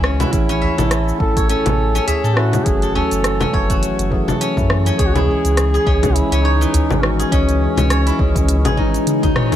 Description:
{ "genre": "organic downtempo", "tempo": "103 BPM", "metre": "4/4", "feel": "swing 56% on 16ths", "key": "C# minor", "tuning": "A4 = 440 Hz", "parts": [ { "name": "mellow duduk", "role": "melody", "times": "0.0-9.1 s", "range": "C#4 to A4", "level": "-22 LUFS", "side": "right 1 dB", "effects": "ping-pong delay, shimmer reverb" }, { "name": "tine electric piano", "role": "accompaniment", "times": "0.0-9.6 s", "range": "E3 to D#5", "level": "-23 LUFS", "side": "left 2 dB", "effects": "vintage 12-bit sampler grit, sidechain pumping, ping-pong delay, shimmer reverb" }, { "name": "steel-string zither", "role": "arpeggios", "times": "0.0-9.6 s", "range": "E3 to E5", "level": "-22 LUFS", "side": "left 1 dB", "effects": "ping-pong delay, shimmer reverb" }, { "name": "warm sub bass", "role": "bass", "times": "0.0-9.3 s", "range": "F#1 to A2", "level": "-18 LUFS", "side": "equal", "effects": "sidechain pumping" }, { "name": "deep house drum kit", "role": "drums", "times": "0.0-9.6 s", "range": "cabasa, congas, hi-hat, rim click, toms", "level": "-22 LUFS", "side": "left 1 dB", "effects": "none" }, { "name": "electronic kick drum", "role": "drums", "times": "0.3-9.3 s", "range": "none", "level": "-20 LUFS", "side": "equal", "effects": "none" }, { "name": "bronze singing bowl", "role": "texture", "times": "0.3-9.6 s", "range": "E3 to C#5", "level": "-32 LUFS", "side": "equal", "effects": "none" }, { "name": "udu", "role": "percussion", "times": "0.6-9.3 s", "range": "none", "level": "-22 LUFS", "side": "equal", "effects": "none" } ], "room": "light reverb, small room ambience", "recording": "none", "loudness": "-14 LUFS", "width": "side -11 dB against mid", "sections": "0.0-9.6 A section", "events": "drum fill 9.1-9.6; band accent 9.4", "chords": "0.3 A; 2.7 F#m7; 5.0 C#madd9" }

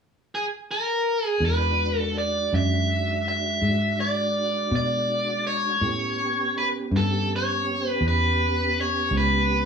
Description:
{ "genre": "slow blues", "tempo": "54 BPM (dotted quarters)", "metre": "12/8", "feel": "straight", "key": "E mixolydian", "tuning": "A4 = 440 Hz", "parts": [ { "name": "biting overdriven guitar", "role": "melody", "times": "0.3-9.7 s", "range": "G#4 to E5", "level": "-24 LUFS", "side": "equal", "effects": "none" }, { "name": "mellow tonewheel organ", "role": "sustained chords", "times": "1.4-9.7 s", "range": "G#3 to G4", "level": "-30 LUFS", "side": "right 1 dB", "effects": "slow rotary speaker, chorus vibrato" }, { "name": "fingered electric bass", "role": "bass", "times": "1.4-9.7 s", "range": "C#2 to B2", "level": "-26 LUFS", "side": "equal", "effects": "none" } ], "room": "moderate studio reverb, RT60 0.8 s", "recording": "band playing live in one room, studio ambience", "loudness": "-22 LUFS", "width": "side -6 dB against mid", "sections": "0.0-1.4 A section; 1.4-9.7 B section", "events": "none", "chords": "0.0 N.C.; 1.4 E9; 5.8 A9" }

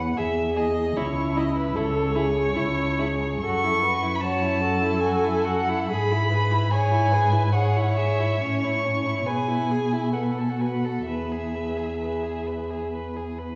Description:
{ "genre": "classical, slow romantic movement for string quartet", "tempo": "63-77 BPM", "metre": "3/4", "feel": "rubato", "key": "E major", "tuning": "A4 = 441 Hz", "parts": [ { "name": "muted violin", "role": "melody", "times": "0.0-12.9 s", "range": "B4 to C#6", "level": "-30 LUFS", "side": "equal", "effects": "none" }, { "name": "muted viola", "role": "accompaniment", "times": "0.0-13.4 s", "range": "E4 to C#5", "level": "-30 LUFS", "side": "equal", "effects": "none" }, { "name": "muted cello", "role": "bass", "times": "0.0-13.6 s", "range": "C#2 to B2", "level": "-28 LUFS", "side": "equal", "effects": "none" }, { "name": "muted violin", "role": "second line", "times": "0.2-13.6 s", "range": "C#4 to B4", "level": "-33 LUFS", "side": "equal", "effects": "none" } ], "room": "wet recital hall reverb, RT60 1.6 s", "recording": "heard from further back in the room, vinyl crackle, nothing above 7.9 kHz", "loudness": "-24 LUFS", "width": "mono", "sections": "0.0-13.6 A section", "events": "none", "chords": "0.0 E; 1.0 C#m; 3.4 F#m7; 5.9 E/G#; 8.4 A; 9.3 E/B; 10.1 B5; 11.1 E" }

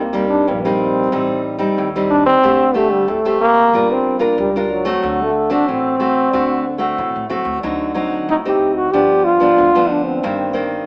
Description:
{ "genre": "samba and choro", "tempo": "92 BPM", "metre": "4/4", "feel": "straight", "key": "unclear", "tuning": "A4 = 440 Hz", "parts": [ { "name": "mellow trombone", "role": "melody", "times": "0.0-10.9 s", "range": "F#3 to G4", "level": "-18 LUFS", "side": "equal", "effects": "none" }, { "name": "nylon-string guitar", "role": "accompaniment", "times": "0.0-10.9 s", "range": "G2 to Bb4", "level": "-20 LUFS", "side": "equal", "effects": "none" }, { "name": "upright bass", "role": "bass", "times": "0.0-10.8 s", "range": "G1 to C3", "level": "-34 LUFS", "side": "equal", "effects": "none" } ], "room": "moderate stone room reverb, RT60 1.2 s", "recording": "band playing live in one room, small speaker sound", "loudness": "-16 LUFS", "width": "mono", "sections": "0.0-10.9 A section", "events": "none", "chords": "0.0 Cm7; 1.1 Am7b5; 2.4 D7sus4; 3.7 Gm7; 5.0 D7; 7.6 D7b9; 8.9 G7; 10.2 Cm7/G" }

